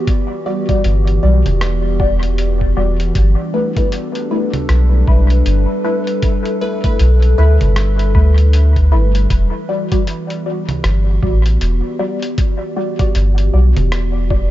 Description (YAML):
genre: ambient dub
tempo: 78 BPM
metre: 4/4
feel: swing 60% on 16ths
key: E minor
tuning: A4 = 439 Hz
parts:
  - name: warbly tape-like pad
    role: sustained chords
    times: 0.0-14.5 s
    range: E3 to B4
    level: -22 LUFS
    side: left 1 dB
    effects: chorus, built-in reverb
  - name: electronic kick drum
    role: drums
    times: 0.1-14.5 s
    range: none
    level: -16 LUFS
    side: equal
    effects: none
  - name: lo-fi sampler-style drum kit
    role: drums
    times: 0.1-14.1 s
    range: congas, hi-hat, rim click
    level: -26 LUFS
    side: right 1 dB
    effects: dub echo
  - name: filtered dub chord stab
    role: stabs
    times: 0.5-14.5 s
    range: G3 to D5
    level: -22 LUFS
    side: left 2 dB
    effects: phaser, lush chorus, dub echo
  - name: soft dub sub bass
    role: bass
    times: 0.8-14.5 s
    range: E1 to D2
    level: -12 LUFS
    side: equal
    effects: tube saturation
room: digital ambience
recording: nothing above 7.7 kHz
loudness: -12 LUFS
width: side -14 dB against mid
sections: 0.0-14.5 A section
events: none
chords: 0.0 Em9; 3.2 G69; 9.3 Em9